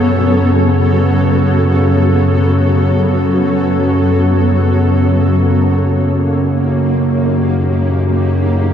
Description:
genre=dark ambient drone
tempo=free time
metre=none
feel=none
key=unclear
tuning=A4 = 440 Hz
part: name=granular cloud pad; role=sustained chords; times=0.0-8.7 s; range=F#3 to C#5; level=-15 LUFS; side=equal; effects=built-in reverb
part: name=tubular bells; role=arpeggios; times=0.0-4.9 s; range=none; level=barely audible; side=none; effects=none
part: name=analog drone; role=drone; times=0.0-8.7 s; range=F#2 to C#3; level=-12 LUFS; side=equal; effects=chorus
room=moderate huge ambient reverb, RT60 9.2 s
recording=in a vast, echoing space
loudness=-11 LUFS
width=side -9 dB against mid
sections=0.0-8.7 A section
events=none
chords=0.0 F#m; 4.9 D#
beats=free time

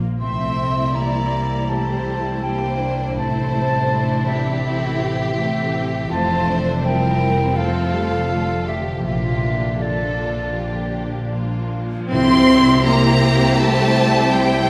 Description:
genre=cinematic, emotional film score for orchestra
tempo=81 BPM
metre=4/4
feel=rubato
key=C mixolydian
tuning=A4 = 440 Hz
part: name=rich symphonic viola section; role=accompaniment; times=0.0-14.7 s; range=F3 to E4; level=-30 LUFS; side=equal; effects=none
part: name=concert harp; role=arpeggios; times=0.0-14.7 s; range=F2 to C6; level=-26 LUFS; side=equal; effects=none
part: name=warm symphonic violin section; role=melody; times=0.2-14.7 s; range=D4 to C6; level=-28 LUFS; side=equal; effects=none
part: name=concert flute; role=second line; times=0.2-14.7 s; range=D5 to C6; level=-27 LUFS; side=equal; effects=none
part: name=warm symphonic violin section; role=second line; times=0.2-14.7 s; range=F4 to E5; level=-29 LUFS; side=equal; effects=none
part: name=rich symphonic double bass section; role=bass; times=0.2-14.7 s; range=F1 to C2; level=-28 LUFS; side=equal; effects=none
part: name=warm symphonic cello section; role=bass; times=0.2-14.7 s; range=D3 to C4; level=-25 LUFS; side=equal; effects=none
part: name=cymbal swell and tam-tam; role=percussion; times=9.1-14.7 s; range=none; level=-32 LUFS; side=equal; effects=none
part: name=mellow clarinet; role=second line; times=12.1-14.7 s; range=C5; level=-32 LUFS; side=equal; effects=none
part: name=warm French horn section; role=sustained chords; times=12.1-14.7 s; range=C4 to E4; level=-29 LUFS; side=equal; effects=none
part: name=timpani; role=percussion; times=12.1-13.2 s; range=C3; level=-32 LUFS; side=equal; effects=none
room=wet concert hall reverb, RT60 2.3 s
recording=recorded in a church or concert hall, faint mains hum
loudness=-19 LUFS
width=mono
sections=0.0-12.1 A section; 12.1-14.7 A section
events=band accent 12.1-12.9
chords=0.2 C; 3.2 Am; 6.1 F; 9.1 Bb; 12.1 C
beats=| 0.22 0.96 1.70 2.44 | 3.19 3.92 4.65 5.37 | 6.12 6.85 7.58 8.31 | 9.07 9.83 10.59 11.35 | 12.11 12.86 13.60 14.33

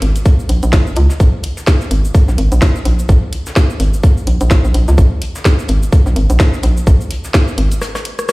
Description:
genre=minimal techno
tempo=127 BPM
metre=4/4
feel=swing 58% on 16ths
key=Bb minor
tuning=A4 = 440 Hz
part: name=hollow knocking FM bass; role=bass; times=0.0-7.8 s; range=Ab1 to Db2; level=-13 LUFS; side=equal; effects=tube saturation, sidechain pumping
part: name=garage drum kit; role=drums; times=0.0-8.3 s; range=hi-hat, rim click, shaker, snare drum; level=-21 LUFS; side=equal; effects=none
part: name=soft brush drum kit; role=drums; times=0.0-8.3 s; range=hi-hat, snare drum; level=-30 LUFS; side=left 2 dB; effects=sidechain pumping on hats, high-pass filter on hats, high-pass filter on snare, high-pass filter on room
part: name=electronic kick drum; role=drums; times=0.3-7.5 s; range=none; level=-9 LUFS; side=equal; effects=none
room=studio reverb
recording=played on a big sound system in a bare room, stone room reverb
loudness=-11 LUFS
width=side -22 dB against mid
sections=0.0-8.3 A section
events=break 7.8-8.3; drum fill 7.8-8.3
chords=none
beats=0.26 0.73 | 1.20 1.67 2.15 2.62 | 3.09 3.56 4.04 4.51 | 4.98 5.45 5.93 6.40 | 6.87 7.34 7.82 8.29

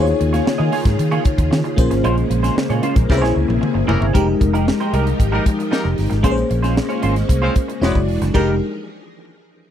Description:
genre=polished 1980s jazz-funk pop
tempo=114 BPM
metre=4/4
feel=straight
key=F minor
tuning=A4 = 440 Hz
part: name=FM electric piano with soft pad layer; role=accompaniment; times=0.0-8.6 s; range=Ab3 to D5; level=-21 LUFS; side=left 3 dB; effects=wide subtle chorus
part: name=string machine, full ensemble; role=sustained chords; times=0.0-8.6 s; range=C3 to Bb4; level=-26 LUFS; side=equal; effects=ensemble chorus
part: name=clean electric guitar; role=riff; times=0.0-8.5 s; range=Ab3 to Eb5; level=-24 LUFS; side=right 4 dB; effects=analog chorus
part: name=fingered electric bass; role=bass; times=0.0-8.6 s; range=E1 to Eb3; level=-19 LUFS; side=equal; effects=none
part: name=tight funk drum kit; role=drums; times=0.1-8.5 s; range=crash cymbal, hi-hat, kick drum, snare drum, toms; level=-18 LUFS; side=equal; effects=none
part: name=clear horn section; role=second line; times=3.1-8.5 s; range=G3 to C5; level=-24 LUFS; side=left 2 dB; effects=none
room=little or no reverb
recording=dry, close 1970s-style studio recording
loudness=-15 LUFS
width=side -10 dB against mid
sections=0.0-4.1 A section; 4.1-8.3 B section; 8.3-9.7 C section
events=band accent 2.0-4.1; drum fill 3.1-4.1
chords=0.0 Eb9sus4; 1.8 Bbm9; 3.1 C7b9b13; 4.1 Fm11; 6.2 Bbm9; 7.8 E9; 8.3 Fm11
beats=0.46 0.99 1.51 | 2.04 2.56 3.09 3.62 | 4.14 4.67 5.19 5.72 | 6.24 6.77 7.29 7.82 | 8.35

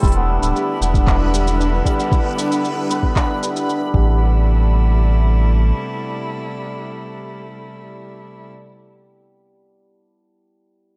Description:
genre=folktronica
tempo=115 BPM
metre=4/4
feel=straight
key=A minor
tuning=A4 = 440 Hz
part: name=clear string quartet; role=sustained chords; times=0.0-8.5 s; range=C3 to E4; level=-28 LUFS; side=equal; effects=low-pass filter
part: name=hammered dulcimer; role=arpeggios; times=0.0-8.7 s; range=G3 to C5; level=-26 LUFS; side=equal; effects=low-pass filter, tape echo
part: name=warm sub bass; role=bass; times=0.0-5.7 s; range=D1 to A1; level=-18 LUFS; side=equal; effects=none
part: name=electronic kick drum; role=drums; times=0.0-4.0 s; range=none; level=-20 LUFS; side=equal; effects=none
part: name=organic electronic drum kit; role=drums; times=0.0-3.8 s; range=handclaps, hi-hat, shaker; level=-29 LUFS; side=equal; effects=none
part: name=backwards swelling texture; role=texture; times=0.7-4.2 s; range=B4 to B5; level=-36 LUFS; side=equal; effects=built-in reverb
room=light reverb, studio reverb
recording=dark, warm production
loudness=-18 LUFS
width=mono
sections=0.0-4.2 A section; 4.2-8.4 B section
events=filter sweep on hammered dulcimer 0.0-4.2; filter sweep on string quartet 0.0-4.2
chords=0.0 Em7; 3.9 Am7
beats=| 0.03 0.55 1.07 1.59 | 2.12 2.64 3.16 3.68 | 4.20 4.72 5.25 5.77 | 6.29 6.81 7.33 7.85

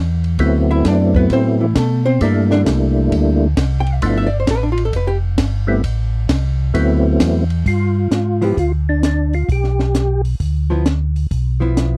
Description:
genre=soul jazz organ trio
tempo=132 BPM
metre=4/4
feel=swing 66% on 8ths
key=G mixolydian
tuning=A4 = 443 Hz
part: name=mellow tonewheel organ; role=bass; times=0.0-12.0 s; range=F1 to B2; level=-19 LUFS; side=equal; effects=chorus vibrato, stopped rotary speaker
part: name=compact cocktail drum kit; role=drums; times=0.2-11.9 s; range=hi-hat, kick drum, ride cymbal, snare drum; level=-22 LUFS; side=equal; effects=none
part: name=percussive tonewheel organ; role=melody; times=0.4-10.2 s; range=F3 to G4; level=-20 LUFS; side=equal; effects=slow rotary speaker, chorus vibrato
part: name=archtop guitar, miked and amplified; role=accompaniment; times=0.7-5.2, 8.4-12.0 s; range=D3 to G5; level=-22 LUFS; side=equal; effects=none
room=light reverb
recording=dry, close 1970s-style studio recording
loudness=-16 LUFS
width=mono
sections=0.0-7.7 A section; 7.7-12.0 B section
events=hollow-body jazz guitar solo 0.0-7.7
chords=0.4 D13; 2.2 C13; 4.0 G13; 5.8 Am; 6.7 D13; 7.7 G6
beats=| 0.39 0.85 1.30 1.75 | 2.21 2.66 3.11 3.56 | 4.02 4.47 4.93 5.38 | 5.83 6.29 6.75 7.20 | 7.66 8.11 8.57 9.02 | 9.48 9.93 10.39 10.85 | 11.30 11.76

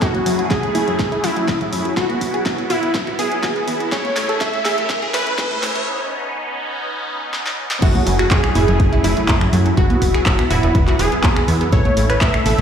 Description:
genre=progressive house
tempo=123 BPM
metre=4/4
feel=straight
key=F# dorian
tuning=A4 = 439 Hz
part: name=plucky unison lead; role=melody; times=0.0-12.6 s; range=E4 to E5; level=-21 LUFS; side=equal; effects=sidechain pumping, tape echo
part: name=filtered supersaw swell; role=sustained chords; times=0.0-12.6 s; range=F#3 to G#4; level=-24 LUFS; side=equal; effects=phaser, vintage 12-bit sampler grit, sidechain pumping
part: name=wide unison pluck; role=arpeggios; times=0.0-12.6 s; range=F#3 to B4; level=-24 LUFS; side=right 1 dB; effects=sidechain pumping, tape echo
part: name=plucky analog bass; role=bass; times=0.0-12.6 s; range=E1 to A2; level=-21 LUFS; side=equal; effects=tube saturation, sidechain pumping
part: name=electronic kick drum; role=drums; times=0.0-12.3 s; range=none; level=-18 LUFS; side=equal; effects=none
part: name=pop drum kit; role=drums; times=0.0-12.6 s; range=crash cymbal, finger snaps, handclaps, hi-hat, snare drum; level=-24 LUFS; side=equal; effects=high-pass filter on hats, high-pass filter on snare, high-pass filter on cymbals, high-pass filter on room
part: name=riser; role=sound effects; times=2.3-5.9 s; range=none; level=-29 LUFS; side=equal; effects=none
part: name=electronic congas and toms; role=percussion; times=0.1-12.6 s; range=none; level=-28 LUFS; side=right 1 dB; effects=sidechain pumping on perc, sidechain pumping on toms
room=moderate scoring stage reverb, RT60 2.0 s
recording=played on a big sound system in a bare room, large studio reverb, high-pass filter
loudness=-15 LUFS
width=side -8 dB against mid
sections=0.0-7.8 A section; 7.8-12.6 B section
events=build-up 0.0-7.8; filter sweep on synth pluck 0.0-7.8; filter sweep 0.0-7.8; drum fill 0.0-5.9, 7.3-7.8; riser 2.3-5.9; break 5.9-7.8; drop 7.8-12.6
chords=0.0 F#m7; 2.0 Esus2; 3.9 A; 5.9 Badd9; 7.8 F#m7; 9.8 Esus2; 11.7 A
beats=| 0.02 0.51 0.99 1.48 | 1.97 2.46 2.94 3.43 | 3.92 4.41 4.90 5.38 | 5.87 6.36 6.85 7.33 | 7.82 8.31 8.80 9.29 | 9.77 10.26 10.75 11.24 | 11.72 12.21

